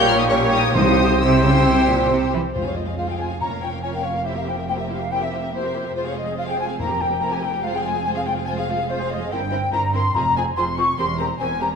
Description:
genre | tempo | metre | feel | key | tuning
quick classical-period movement for symphony orchestra | 142 BPM | 4/4 | rubato | F minor | A4 = 441 Hz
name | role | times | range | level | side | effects
warm studio violin section | melody | 0.0-11.8 s | C5 to F6 | -29 LUFS | left 4 dB | none
clear clarinet | second line | 0.0-2.3 s | Db4 to F4 | -30 LUFS | right 1 dB | none
clear studio violin section | second line | 0.0-11.7 s | F4 to F5 | -30 LUFS | left 3 dB | none
mellow flute section | second line | 0.0-11.7 s | C5 to Db6 | -23 LUFS | left 2 dB | none
warm cor anglais | second line | 0.0-2.3 s | C5 to Db5 | -28 LUFS | right 2 dB | none
rich studio viola section | accompaniment | 0.0-11.7 s | F3 to Ab4 | -30 LUFS | right 2 dB | none
warm bassoon | accompaniment | 0.0-2.3 s | Bb3 to C4 | -26 LUFS | right 3 dB | none
mellow French horn section | sustained chords | 0.0-2.3 s | Bb3 to G4 | -28 LUFS | left 4 dB | none
bright trumpet section | stabs | 0.0-2.3 s | C5 to Db5 | -24 LUFS | left 1 dB | none
rich studio cello section | bass | 0.0-11.8 s | E2 to E3 | -25 LUFS | right 3 dB | none
warm studio double bass section | bass | 0.0-11.8 s | E1 to C2 | -29 LUFS | right 3 dB | none
timpani | percussion | 0.8-4.0, 6.8-7.4, 10.1-10.7 s | F2 to C3 | -27 LUFS | left 2 dB | none
room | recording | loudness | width
wet scoring stage reverb, RT60 1.5 s | minimal, uncompressed stereo recording | -18 LUFS | side -6 dB against mid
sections
0.0-2.6 A section; 2.6-11.8 A section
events
none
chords
0.0 Gdim/Bb; 0.8 C; 2.6 Fm; 3.4 Bbm/F; 4.3 C7/F; 6.0 Fm; 6.8 C7/F; 7.6 Fm; 9.3 C7/G; 10.1 Fm; 11.0 C7/E

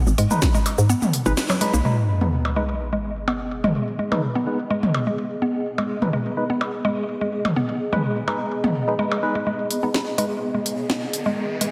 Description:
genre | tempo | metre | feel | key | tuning
minimal techno | 126 BPM | 4/4 | straight | G# minor | A4 = 438 Hz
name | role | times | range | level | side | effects
hollow knocking FM bass | bass | 0.1-1.8 s | G#1 to G#2 | -22 LUFS | equal | sidechain pumping
techno drum kit | drums | 0.1-1.8, 9.7-11.7 s | cabasa, hi-hat, snare drum | -29 LUFS | equal | overdrive, low-pass filter on perc, low-pass filter on hats, low-pass filter on snare
mallet-like synth pluck | riff | 0.2-11.7 s | F#3 to D#4 | -28 LUFS | equal | chorus, sidechain pumping, analog delay
percussive organ stab | stabs | 0.3-10.3 s | G#3 to B4 | -31 LUFS | equal | chorus, tape echo
electronic toms and percussion blips | percussion | 0.3-9.2 s | none | -28 LUFS | equal | tape echo
electronic kick drum | drums | 0.4-0.5 s | none | -23 LUFS | equal | none
sub drop and riser | sound effects | 1.8-3.8, 10.4-11.7 s | none | -29 LUFS | equal | none
granular cloud pad | texture | 2.8-11.7 s | B3 to D#5 | -31 LUFS | equal | built-in reverb, sidechain pumping
room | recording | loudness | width
wet lush hall reverb, RT60 2.1 s | dreamy mix soaked in reverb | -23 LUFS | mono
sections
0.0-1.8 A section; 1.8-9.5 B section; 9.5-11.7 C section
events
kick drops out 0.9-1.8; band accent 1.4; impact 1.8-3.8; filter sweep on synth arpeggio sound 1.8-9.5; filter sweep on synth stab 1.8-9.5; build-up 9.5-11.7; riser 10.4-11.7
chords
0.0 G#m

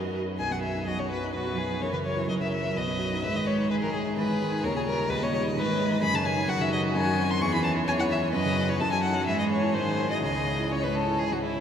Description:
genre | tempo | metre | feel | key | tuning
quick classical-period movement for piano quartet | 128 BPM | 3/4 | rubato | B major, C# minor from 6.0 s | A4 = 443 Hz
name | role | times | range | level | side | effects
clear violin | second line | 0.0-11.6 s | E4 to D#5 | -33 LUFS | left 1 dB | none
rich cello | second line | 0.0-11.4 s | C#3 to F#4 | -34 LUFS | right 4 dB | none
warm grand piano | accompaniment | 0.0-11.6 s | B1 to A#4 | -28 LUFS | equal | none
rich violin | melody | 0.4-11.2 s | G#4 to C#6 | -29 LUFS | left 3 dB | none
room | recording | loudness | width
wet huge ambient reverb, RT60 7.7 s | in a vast, echoing space | -24 LUFS | side -8 dB against mid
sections
0.4-11.6 A section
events
none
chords
0.4 B; 1.8 F#7; 2.8 B; 3.2 G#m; 4.6 D#7; 5.6 G#m; 6.0 F#sus2; 6.9 G#7/F#; 7.4 C#m/E; 8.3 F#5; 8.8 D#dim/F#; 9.3 C#m/G#; 9.7 G#7; 10.2 C#m

